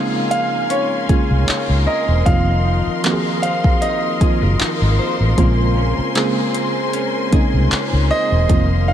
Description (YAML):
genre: contemporary R&B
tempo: 77 BPM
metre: 4/4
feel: swing 54% on 16ths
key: Bb minor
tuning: A4 = 440 Hz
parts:
  - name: warm baby grand piano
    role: melody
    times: 0.0-8.9 s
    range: Db5 to F5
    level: -21 LUFS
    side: right 2 dB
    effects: diffuse ambient delay
  - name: FM electric piano with tremolo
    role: accompaniment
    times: 0.0-8.9 s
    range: Db3 to Ab4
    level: -22 LUFS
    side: right 3 dB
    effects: none
  - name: warm studio string section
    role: sustained chords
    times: 0.0-8.9 s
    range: Bb4 to C6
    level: -24 LUFS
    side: left 2 dB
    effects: none
  - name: direct-recorded clean electric guitar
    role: arpeggios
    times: 0.0-8.9 s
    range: F3 to C5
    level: -26 LUFS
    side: left 6 dB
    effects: lush chorus, diffuse ambient delay
  - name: smooth R&B drum kit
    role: drums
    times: 0.3-8.7 s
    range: handclaps, hi-hat, kick drum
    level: -20 LUFS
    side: equal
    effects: overdrive, vintage 12-bit sampler grit
  - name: vintage muted fingered electric bass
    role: bass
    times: 1.1-8.9 s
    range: E1 to Db2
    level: -16 LUFS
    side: equal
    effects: none
  - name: hammered dulcimer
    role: texture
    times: 5.4-8.7 s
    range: F4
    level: -31 LUFS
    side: left 3 dB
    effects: stereo widening, diffuse ambient delay
room: moderate huge ambient reverb, RT60 3.9 s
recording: dreamy mix soaked in reverb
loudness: -14 LUFS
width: side -10 dB against mid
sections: 0.0-8.9 A section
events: none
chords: 0.0 Bbm9; 2.3 F7sus4; 5.4 Bbm9